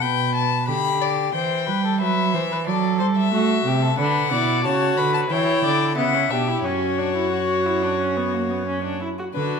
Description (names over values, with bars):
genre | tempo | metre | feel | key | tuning
classical, baroque-style fugue for string quartet | 90 BPM | 4/4 | straight | unclear | A4 = 440 Hz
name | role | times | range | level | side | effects
rich violin | melody | 0.0-9.6 s | B4 to B5 | -25 LUFS | left 9 dB | none
dark violin | second line | 0.0-9.6 s | F#4 to E5 | -24 LUFS | left 4 dB | none
dark cello | bass | 0.0-9.6 s | F#2 to A3 | -24 LUFS | right 5 dB | none
rich viola | accompaniment | 4.0-9.6 s | A#3 to F#4 | -25 LUFS | right 2 dB | none
room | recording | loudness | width
moderate recital hall reverb, RT60 1.4 s | none | -19 LUFS | side -5 dB against mid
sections
0.0-9.3 A section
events
none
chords
0.0 G/B; 1.3 Cmaj7/E; 2.7 F#dim; 4.0 Bm; 5.3 C#dim; 6.6 F#5